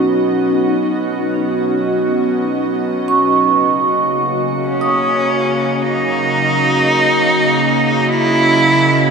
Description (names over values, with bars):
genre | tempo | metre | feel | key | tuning
ambient | free time | none | none | unclear | A4 = 440 Hz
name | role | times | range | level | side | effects
evolving wavetable pad | sustained chords | 0.0-9.1 s | B2 to D#5 | -17 LUFS | right 1 dB | chorus, built-in reverb, shimmer reverb
vibraphone with medium mallets | arpeggios | 0.0-9.1 s | D#4 to D#6 | -18 LUFS | right 2 dB | shimmer reverb, ping-pong delay
organ-like drone | drone | 0.0-9.1 s | F#3 to F#4 | -24 LUFS | right 1 dB | ensemble chorus, built-in reverb
rich cello | melody | 4.7-9.1 s | C#4 to E4 | -14 LUFS | right 1 dB | shimmer reverb, ping-pong delay
room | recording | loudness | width
wet cathedral reverb, RT60 5.6 s | dreamy mix soaked in reverb | -12 LUFS | side -5 dB against mid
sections
0.0-9.1 A section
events
none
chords
0.0 Badd9; 3.5 D#m7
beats
free time